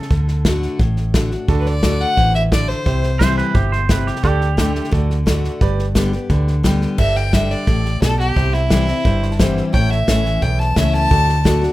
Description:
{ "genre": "honky-tonk and classic country", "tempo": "174 BPM", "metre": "4/4", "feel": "straight", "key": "G major", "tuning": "A4 = 440 Hz", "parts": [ { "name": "twangy electric guitar", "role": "second line", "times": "0.0-0.4, 3.2-4.9 s", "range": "G4 to C5", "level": "-23 LUFS", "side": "right 5 dB", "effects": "plate reverb, tape echo" }, { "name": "picked steel-string acoustic guitar", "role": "accompaniment", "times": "0.0-11.7 s", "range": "E2 to G4", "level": "-22 LUFS", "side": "left 3 dB", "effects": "none" }, { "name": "natural country drum kit", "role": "drums", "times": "0.0-11.7 s", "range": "crash cymbal, hi-hat, kick drum, snare drum", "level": "-19 LUFS", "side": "equal", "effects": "none" }, { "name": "vintage muted fingered electric bass", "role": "bass", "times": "0.1-11.7 s", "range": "G1 to D2", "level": "-18 LUFS", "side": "equal", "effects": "none" }, { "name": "warm concert grand piano", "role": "accompaniment", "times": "1.5-11.7 s", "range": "D4 to C6", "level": "-28 LUFS", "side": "right 6 dB", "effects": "plate reverb" }, { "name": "clear fiddle", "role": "melody", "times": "1.6-3.4, 7.0-11.6 s", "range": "E4 to A5", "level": "-20 LUFS", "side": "equal", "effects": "plate reverb" } ], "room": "light reverb", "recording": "rough home demo mix", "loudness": "-14 LUFS", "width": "side -16 dB against mid", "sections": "0.0-7.0 A section; 7.0-11.7 B section", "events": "fiddle solo 7.0-11.7; grand piano fill 9.1-9.7", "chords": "0.1 D; 2.9 C; 4.2 Dsus4; 4.9 D; 5.6 G; 7.0 Gsus2; 8.4 C; 9.7 A; 11.1 D", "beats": "| 0.11 0.45 0.80 1.14 | 1.49 1.83 2.17 2.52 | 2.86 3.21 3.55 3.90 | 4.24 4.58 4.93 5.27 | 5.61 5.96 6.30 6.64 | 6.99 7.33 7.68 8.02 | 8.36 8.71 9.05 9.40 | 9.74 10.08 10.43 10.77 | 11.11 11.46" }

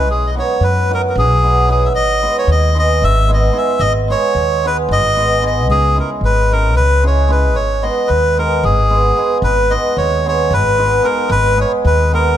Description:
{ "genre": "balkan folk, Balkan wedding band", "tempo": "224 BPM (eighths)", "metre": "7/8", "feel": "straight", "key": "G# minor", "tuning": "A4 = 440 Hz", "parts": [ { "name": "melodica", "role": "melody", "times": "0.0-12.4 s", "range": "G#4 to E5", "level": "-16 LUFS", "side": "equal", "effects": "none" }, { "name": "cimbalom", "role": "accompaniment", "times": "0.0-12.4 s", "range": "F#3 to G#4", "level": "-18 LUFS", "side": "right 2 dB", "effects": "none" }, { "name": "upright bass", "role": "bass", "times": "0.0-12.4 s", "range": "G#1 to F#2", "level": "-16 LUFS", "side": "equal", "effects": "none" } ], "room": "light reverb", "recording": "close, detailed microphones", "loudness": "-12 LUFS", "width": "side -11 dB against mid", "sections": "0.0-9.4 A section; 9.4-12.4 B section", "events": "none", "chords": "0.1 B; 1.9 G#m; 5.7 C#m; 7.5 G#m", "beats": "| 0.07 0.34 0.60 0.87 1.14 1.40 1.67 | 1.93 2.20 2.47 2.73 3.00 3.27 3.53 | 3.80 4.07 4.33 4.60 4.87 5.13 5.40 | 5.67 5.93 6.20 6.47 6.74 7.00 7.27 | 7.54 7.81 8.07 8.34 8.61 8.88 9.15 | 9.41 9.68 9.95 10.22 10.49 10.76 11.03 | 11.29 11.56 11.83 12.10 12.37" }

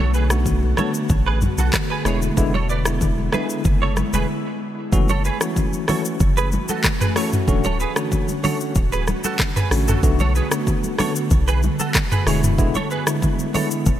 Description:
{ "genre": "afrobeats", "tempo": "94 BPM", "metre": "4/4", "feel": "straight", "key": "F# minor", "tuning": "A4 = 442 Hz", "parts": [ { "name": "ethereal airy pad", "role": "sustained chords", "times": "0.0-14.0 s", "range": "D3 to F#4", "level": "-28 LUFS", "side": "equal", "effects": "ensemble chorus, built-in reverb" }, { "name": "direct-recorded clean electric guitar", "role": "riff", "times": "0.0-13.7 s", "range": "F#4 to D5", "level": "-27 LUFS", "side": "right 6 dB", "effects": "ensemble chorus, digital delay" }, { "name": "punchy sub bass", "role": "bass", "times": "0.0-14.0 s", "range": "D1 to B1", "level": "-21 LUFS", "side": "equal", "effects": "none" }, { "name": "congas", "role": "percussion", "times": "0.0-14.0 s", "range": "none", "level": "-28 LUFS", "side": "left 2 dB", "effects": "none" }, { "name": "afro-pop drum kit", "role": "drums", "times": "0.1-14.0 s", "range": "handclaps, hi-hat, kick drum, rim click, shaker, toms", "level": "-21 LUFS", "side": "equal", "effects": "none" }, { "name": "bell-like tine electric piano", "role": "accompaniment", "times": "0.3-13.8 s", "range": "D3 to F#4", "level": "-25 LUFS", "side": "left 1 dB", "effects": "medium stereo tremolo" } ], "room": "light reverb", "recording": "bright 1980s-style digital production", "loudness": "-17 LUFS", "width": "side -12 dB against mid", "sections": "0.0-4.9 A section; 4.9-14.0 B section", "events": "break 4.3-4.9", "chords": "0.0 Bm7; 2.1 E7; 4.9 F#m7; 7.5 Dmaj7; 10.0 Bm7; 12.3 E7", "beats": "0.46 1.10 1.73 | 2.37 3.01 3.65 4.29 | 4.92 5.56 6.20 6.84 | 7.48 8.12 8.76 9.39 | 10.03 10.67 11.31 11.95 | 12.59 13.22 13.86" }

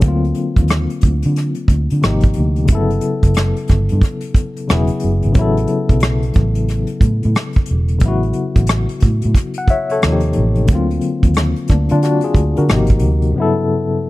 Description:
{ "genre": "R&B, neo-soul", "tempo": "90 BPM", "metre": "4/4", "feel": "swing 63% on 16ths", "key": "unclear", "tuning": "A4 = 438 Hz", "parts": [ { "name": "mellow tine electric piano", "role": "accompaniment", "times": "0.0-14.1 s", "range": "G2 to F#5", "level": "-18 LUFS", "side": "left 3 dB", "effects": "medium tremolo" }, { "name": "vintage muted fingered electric bass", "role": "bass", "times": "0.0-13.3 s", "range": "E1 to D3", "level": "-16 LUFS", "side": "right 1 dB", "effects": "none" }, { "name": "unplugged drum kit", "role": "drums", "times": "0.0-13.3 s", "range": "hi-hat, kick drum, rim click", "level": "-14 LUFS", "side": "equal", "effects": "none" } ], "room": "small room ambience", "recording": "dry, close 1970s-style studio recording", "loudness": "-13 LUFS", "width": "side -18 dB against mid", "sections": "0.0-14.1 A section", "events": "break 13.4-14.1", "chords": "0.0 D7alt; 2.0 G#maj9#11; 2.7 Gmaj9#11; 4.7 E69; 5.4 A69; 10.0 D#add9; 10.7 D7alt; 12.7 G#maj9#11; 13.4 Gmaj9#11", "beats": "| 0.02 0.69 1.35 2.02 | 2.69 3.35 4.02 4.68 | 5.35 6.02 6.68 7.35 | 8.02 8.69 9.35 10.02 | 10.69 11.35 12.02 12.69 | 13.35 14.02" }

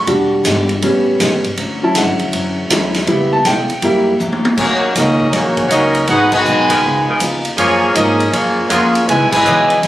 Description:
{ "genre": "jazz, big band swing", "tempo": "160 BPM", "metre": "4/4", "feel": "swing 65% on 8ths", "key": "Eb minor from 4.6 s", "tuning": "A4 = 440 Hz", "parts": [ { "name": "clear concert grand piano", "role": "accompaniment", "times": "0.0-4.1 s", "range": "F#3 to C#6", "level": "-14 LUFS", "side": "equal", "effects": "none" }, { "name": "upright bass", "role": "bass", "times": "0.0-9.9 s", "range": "E1 to Ab2", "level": "-23 LUFS", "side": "equal", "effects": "none" }, { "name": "picked steel-string acoustic guitar", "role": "accompaniment", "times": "0.1-9.9 s", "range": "Gb2 to Bb4", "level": "-24 LUFS", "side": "left 2 dB", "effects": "none" }, { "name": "swinging big-band drum kit", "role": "drums", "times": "0.1-9.9 s", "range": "crash cymbal, hi-hat, kick drum, ride cymbal, snare drum, toms", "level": "-19 LUFS", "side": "equal", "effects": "none" }, { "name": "mellow trumpet section", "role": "melody", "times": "4.6-9.9 s", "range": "Bb3 to Ab5", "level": "-14 LUFS", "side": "equal", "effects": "none" }, { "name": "mellow trombone section", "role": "second line", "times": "4.6-9.9 s", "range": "Cb3 to Gb4", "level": "-17 LUFS", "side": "right 1 dB", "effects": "none" }, { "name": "mellow saxophone section", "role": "sustained chords", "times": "4.6-9.8 s", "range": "Fb3 to Eb5", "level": "-20 LUFS", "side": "equal", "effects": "none" } ], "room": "moderate club reverb, RT60 0.5 s", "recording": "recorded on a phone in the room, club reverb", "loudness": "-12 LUFS", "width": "side -14 dB against mid", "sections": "0.0-4.6 A section; 4.6-9.9 B section", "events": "grand piano solo 0.0-4.6; drum fill 4.2-4.6; band accent 6.3, 9.3", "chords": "0.1 Em7; 0.8 A9; 1.6 Dmaj9; 3.1 C#m7b5; 3.8 F#7b9; 4.6 Ebm7; 6.1 Abm7; 6.8 Db13; 7.6 Gbmaj9; 9.1 Dbm9", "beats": "| 0.07 0.45 0.83 1.20 | 1.58 1.95 2.33 2.71 | 3.08 3.46 3.83 4.21 | 4.58 4.96 5.33 5.71 | 6.08 6.46 6.83 7.21 | 7.58 7.96 8.33 8.71 | 9.08 9.46 9.83" }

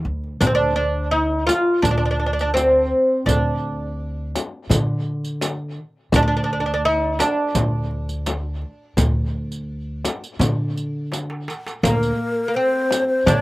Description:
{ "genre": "Arabic maqam ensemble", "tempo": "84 BPM", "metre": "4/4", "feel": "straight", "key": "D maqam bayati", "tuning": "A4 = 439 Hz", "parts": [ { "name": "upright bass", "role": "bass", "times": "0.0-13.4 s", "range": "D2 to D3", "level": "-24 LUFS", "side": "equal", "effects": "none" }, { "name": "darbuka", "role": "percussion", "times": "0.1-13.4 s", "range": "none", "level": "-26 LUFS", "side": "equal", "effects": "none" }, { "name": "oud", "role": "melody", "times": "0.4-13.4 s", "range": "Bb3 to F4", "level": "-19 LUFS", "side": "equal", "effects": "slapback echo" }, { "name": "frame drum", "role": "percussion", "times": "0.4-13.4 s", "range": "none", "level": "-26 LUFS", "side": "left 3 dB", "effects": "none" }, { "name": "riq", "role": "percussion", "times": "0.4-13.4 s", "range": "none", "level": "-28 LUFS", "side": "right 4 dB", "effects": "none" }, { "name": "breathy ney", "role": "second line", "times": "11.8-13.4 s", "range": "Bb4 to D5", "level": "-22 LUFS", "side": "left 2 dB", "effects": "slapback echo" } ], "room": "little or no reverb", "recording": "recorded outdoors, with no room sound", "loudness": "-18 LUFS", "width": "side -18 dB against mid", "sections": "0.4-11.8 A section; 11.8-13.4 B section", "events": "drum fill 11.1-11.8", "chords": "none", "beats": "| 0.41 1.12 1.84 2.55 | 3.27 3.98 4.70 5.41 | 6.12 6.84 7.55 8.27 | 8.98 9.70 10.41 11.13 | 11.84 12.55 13.27" }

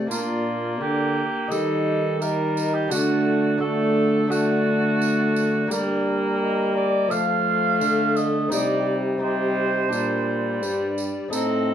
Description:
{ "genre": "classical, renaissance-style consort dance", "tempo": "86 BPM", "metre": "4/4", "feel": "straight", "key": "G minor", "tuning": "A4 = 439 Hz", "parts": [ { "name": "mellow alto recorder", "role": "melody", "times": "0.0-11.7 s", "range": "D5 to F5", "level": "-30 LUFS", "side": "left 5 dB", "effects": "none" }, { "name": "lute", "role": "accompaniment", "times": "0.0-11.7 s", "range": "G2 to A4", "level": "-29 LUFS", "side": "right 1 dB", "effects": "none" }, { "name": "rich viola", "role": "accompaniment", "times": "0.0-11.7 s", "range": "G3 to C4", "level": "-26 LUFS", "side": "left 2 dB", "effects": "none" }, { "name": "warm trombone", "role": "bass", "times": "0.0-11.7 s", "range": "G2 to G3", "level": "-26 LUFS", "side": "right 1 dB", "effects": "none" }, { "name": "mellow cor anglais", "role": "second line", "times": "0.1-11.7 s", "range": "F4 to F5", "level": "-25 LUFS", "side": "right 4 dB", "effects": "none" }, { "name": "tambourine", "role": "percussion", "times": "0.1-11.7 s", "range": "none", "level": "-36 LUFS", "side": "right 5 dB", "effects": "none" } ], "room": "wet stone room reverb, RT60 1.0 s", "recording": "dark, warm production", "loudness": "-20 LUFS", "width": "side -9 dB against mid", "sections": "0.0-11.7 A section", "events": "none", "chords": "0.1 Bb; 1.5 Eb; 2.9 D; 5.7 Gm; 7.1 F; 8.5 Cm; 9.9 Gm/Bb", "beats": "| 0.11 0.81 1.51 2.21 | 2.91 3.61 4.31 5.01 | 5.71 6.41 7.12 7.82 | 8.52 9.22 9.93 10.63 | 11.33" }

